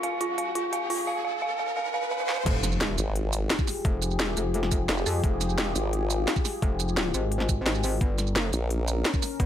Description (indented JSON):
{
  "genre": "dark technical drum and bass",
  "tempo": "173 BPM",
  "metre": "4/4",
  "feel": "straight",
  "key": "F minor",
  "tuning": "A4 = 440 Hz",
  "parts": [
    { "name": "dark analog pad", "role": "sustained chords", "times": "0.0-9.5 s", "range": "G3 to Bb4", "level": "-33 LUFS", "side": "left 3 dB", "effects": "chorus, vintage 12-bit sampler grit, sidechain pumping" },
    { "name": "dark detuned synth bell", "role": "arpeggios", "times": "0.0-2.4 s", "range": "F4 to F5", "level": "-28 LUFS", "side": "right 2 dB", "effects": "chorus, sidechain pumping, digital delay" },
    { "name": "drum and bass drum kit", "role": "drums", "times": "0.0-9.5 s", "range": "crash cymbal, hi-hat, shaker, snare drum, toms", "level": "-29 LUFS", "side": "equal", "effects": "high-pass filter on hats, high-pass filter on toms, high-pass filter on snare, high-pass filter on cymbals, high-pass filter on perc" },
    { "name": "riser and impact", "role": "sound effects", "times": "0.0-3.8 s", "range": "none", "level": "-34 LUFS", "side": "equal", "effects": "none" },
    { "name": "metallic wobble bass", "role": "bass", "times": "2.5-9.5 s", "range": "F1 to F2", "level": "-28 LUFS", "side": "equal", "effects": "chorus, tube saturation" },
    { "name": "electronic kick drum", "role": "drums", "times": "2.5-9.5 s", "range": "none", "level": "-26 LUFS", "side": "equal", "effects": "none" },
    { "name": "formant-sweep wobble bass", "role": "bass", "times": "3.0-6.3, 8.5-9.0 s", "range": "F1 to Bb1", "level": "-27 LUFS", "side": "equal", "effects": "chorus" }
  ],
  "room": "light reverb, digital ambience",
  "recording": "high-pass filter",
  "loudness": "-24 LUFS",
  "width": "side -10 dB against mid",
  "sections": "0.0-2.5 A section; 2.5-9.5 B section",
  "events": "build-up 0.0-2.5; riser 0.0-2.5; filter sweep on analog synth pad 0.0-2.5; drum fill 2.2; drop 2.5-9.5; impact 2.5-3.8",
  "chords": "0.0 Gdim; 2.5 Fmadd9; 8.0 Gdim"
}